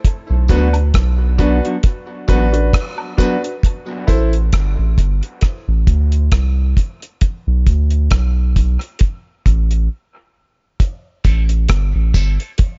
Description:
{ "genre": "dub reggae", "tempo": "67 BPM", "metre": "4/4", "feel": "swing 56% on 16ths", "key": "A dorian", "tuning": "A4 = 439 Hz", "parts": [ { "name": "deep reggae drum kit", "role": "drums", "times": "0.0-12.8 s", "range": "hi-hat, kick drum, rim click", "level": "-17 LUFS", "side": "equal", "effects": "none" }, { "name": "soft dub sub bass", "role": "bass", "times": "0.3-12.4 s", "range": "G1 to D2", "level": "-17 LUFS", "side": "equal", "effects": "none" }, { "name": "mellow electric guitar", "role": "accompaniment", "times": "0.5-3.4, 11.2-12.5 s", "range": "F#3 to A4", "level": "-27 LUFS", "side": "equal", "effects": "high-pass filter, dub echo" }, { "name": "warm upright piano", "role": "stabs", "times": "0.5-4.3, 11.2-12.4 s", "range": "D4 to C5", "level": "-26 LUFS", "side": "equal", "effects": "high-pass filter, dub echo" }, { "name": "tambourine and woodblock", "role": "percussion", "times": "0.5-4.3, 11.2-12.4 s", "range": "none", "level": "-35 LUFS", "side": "equal", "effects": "high-pass filter on perc, dub echo" } ], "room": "small room reverb", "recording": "nothing above 7.6 kHz", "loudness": "-16 LUFS", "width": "mono", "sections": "0.0-10.8 A section; 10.8-12.8 B section", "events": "part muted 3.6-10.8; filter sweep 7.2-12.8; break 9.9-10.8", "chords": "0.0 Bm; 3.6 Am; 7.2 Bm; 10.8 Am" }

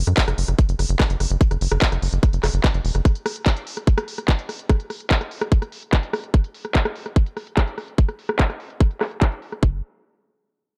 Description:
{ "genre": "psychedelic trance", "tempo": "146 BPM", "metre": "4/4", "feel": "straight", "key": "unclear", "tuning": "A4 = 439 Hz", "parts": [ { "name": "tight sequencer bass", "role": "bass", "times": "0.0-3.0, 9.6-9.8 s", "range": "E1 to F#2", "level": "-23 LUFS", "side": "equal", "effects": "none" }, { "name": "techno drum kit", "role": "drums", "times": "0.1-9.6 s", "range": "handclaps, hi-hat, rim click", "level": "-28 LUFS", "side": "equal", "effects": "overdrive, low-pass filter on hats, low-pass filter on snare, low-pass filter on cymbals" }, { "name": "electronic kick drum", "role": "drums", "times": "0.2-9.7 s", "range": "none", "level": "-19 LUFS", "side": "equal", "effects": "none" } ], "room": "digital ambience", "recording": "dark, warm production", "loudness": "-22 LUFS", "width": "mono", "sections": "0.0-9.6 A section; 9.6-10.8 B section", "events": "filter sweep on drum 0.0-9.6", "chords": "none" }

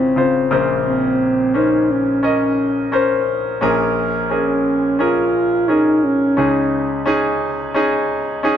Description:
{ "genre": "pop", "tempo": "87 BPM", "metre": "4/4", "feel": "straight", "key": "unclear", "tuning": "A4 = 439 Hz", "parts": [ { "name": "dark French horn", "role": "melody", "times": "0.0-7.1 s", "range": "C4 to F4", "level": "-17 LUFS", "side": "equal", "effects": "none" }, { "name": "clear concert grand piano", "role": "accompaniment", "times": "0.0-8.6 s", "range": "Ab1 to Eb5", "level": "-17 LUFS", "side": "left 1 dB", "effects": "none" } ], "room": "light reverb", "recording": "none", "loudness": "-15 LUFS", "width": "side -9 dB against mid", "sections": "0.0-3.6 A section; 3.6-8.6 B section", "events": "none", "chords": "0.0 Dbmaj7/Ab; 0.5 Bbmadd9; 3.6 Bbm7; 6.4 Dbsus2" }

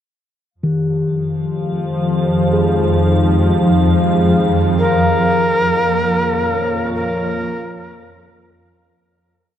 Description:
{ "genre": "dark ambient drone", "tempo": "free time", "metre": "none", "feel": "none", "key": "F minor", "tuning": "A4 = 441 Hz", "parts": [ { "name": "dark analog pad", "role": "sustained chords", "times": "1.7-9.1 s", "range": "F3 to F5", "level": "-22 LUFS", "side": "right 1 dB", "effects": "chorus, phaser" }, { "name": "icy glass pad", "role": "texture", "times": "1.6-9.1 s", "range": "F5", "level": "-26 LUFS", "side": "equal", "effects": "chorus, built-in reverb" }, { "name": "bronze singing bowl", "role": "arpeggios", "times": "0.6-9.0 s", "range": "Eb3 to Ab4", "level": "-20 LUFS", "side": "left 2 dB", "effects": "tape echo" }, { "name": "swarming drone", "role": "drone", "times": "1.2-9.2 s", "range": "F2 to F3", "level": "-17 LUFS", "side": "equal", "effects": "built-in reverb" }, { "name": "bright reedy shakuhachi", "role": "melody", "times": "4.8-8.5 s", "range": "Bb4", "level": "-17 LUFS", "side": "equal", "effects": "none" } ], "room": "moderate huge ambient reverb, RT60 8.7 s", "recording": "worn, warbling old tape, cassette tape, warbly pitch drift", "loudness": "-14 LUFS", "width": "side -10 dB against mid", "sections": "0.5-9.1 A section", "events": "fade-in on analog synth pad 0.5-9.1; fade-in on ambient pad 0.5-9.1; fade-out on singing bowl 0.5-9.1; fade-out 4.8-9.1", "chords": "0.5 Fm7; 4.8 Bbm/F" }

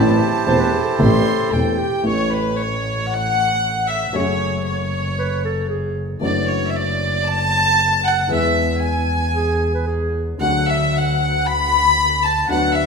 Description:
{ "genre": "tango", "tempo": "115 BPM", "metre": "4/4", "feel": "rubato", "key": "A major", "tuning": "A4 = 442 Hz", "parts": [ { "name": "bandoneon", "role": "melody", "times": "0.0-1.5 s", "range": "E4 to C5", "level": "-22 LUFS", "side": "right 5 dB", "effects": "none" }, { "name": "warm chamber violin section", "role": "second line", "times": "0.0-12.9 s", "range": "B4 to C6", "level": "-19 LUFS", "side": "left 1 dB", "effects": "none" }, { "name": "warm concert grand piano", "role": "accompaniment", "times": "0.0-12.9 s", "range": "E1 to A4", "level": "-22 LUFS", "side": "left 2 dB", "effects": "none" }, { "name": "dark double bass", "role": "bass", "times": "0.0-12.9 s", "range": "E1 to E2", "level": "-24 LUFS", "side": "equal", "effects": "none" }, { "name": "mellow clarinet", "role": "second line", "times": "0.5-6.1, 9.4-10.2 s", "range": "G4 to C5", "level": "-24 LUFS", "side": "right 1 dB", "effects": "none" } ], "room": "wet scoring stage reverb, RT60 1.9 s", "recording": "minimal, uncompressed stereo recording", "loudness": "-16 LUFS", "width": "side -5 dB against mid", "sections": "0.0-2.1 A section; 2.1-12.9 B section", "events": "violin section solo 2.1-12.9", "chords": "0.0 Am7; 2.1 A; 4.2 F#madd9; 6.2 Dadd9/F#; 8.3 E; 10.4 D" }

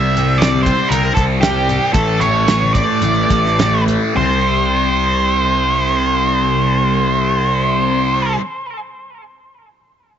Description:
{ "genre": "psychedelic rock", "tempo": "102-120 BPM", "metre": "4/4", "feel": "straight", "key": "C major", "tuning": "A4 = 440 Hz", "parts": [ { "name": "octave-fuzz lead guitar", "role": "melody", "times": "0.0-8.3 s", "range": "G4 to E5", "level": "-17 LUFS", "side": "right 2 dB", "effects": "distortion, tape echo" }, { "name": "thick fuzz guitar", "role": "riff", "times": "0.0-8.4 s", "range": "A2 to C4", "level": "-17 LUFS", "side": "equal", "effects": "distortion, phaser" }, { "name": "fuzz picked electric bass", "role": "bass", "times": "0.0-8.3 s", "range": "A1 to C2", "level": "-20 LUFS", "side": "left 1 dB", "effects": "overdrive" }, { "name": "damped 70s drum kit", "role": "drums", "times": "0.2-4.0 s", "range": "hi-hat, kick drum, snare drum", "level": "-18 LUFS", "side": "right 2 dB", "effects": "none" }, { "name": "congas", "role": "percussion", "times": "0.2-4.4 s", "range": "none", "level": "-29 LUFS", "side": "left 7 dB", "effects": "none" } ], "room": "light reverb", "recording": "1960s-style stereo, nothing above 7.8 kHz", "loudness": "-13 LUFS", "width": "side -9 dB against mid", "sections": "0.0-4.2 A section; 4.2-8.9 B section", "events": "slowing down 0.0-4.2", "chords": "0.0 C; 1.9 A; 4.2 C5" }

